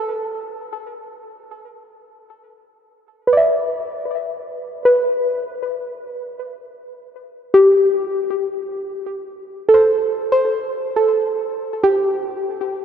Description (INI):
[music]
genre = ambient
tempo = free time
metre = none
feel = none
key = E minor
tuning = A4 = 439 Hz
[part]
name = soft round pluck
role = solo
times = 0.0-12.8 s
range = G4 to E5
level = -17 LUFS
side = equal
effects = chorus, ping-pong delay
[sound]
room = wet cathedral reverb, RT60 5.5 s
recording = worn, warbling old tape, cassette tape, warbly pitch drift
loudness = -16 LUFS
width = side -8 dB against mid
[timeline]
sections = 0.0-2.8 A section; 2.8-12.8 B section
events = none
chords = 0.0 Asus2; 2.8 Em; 8.9 N.C.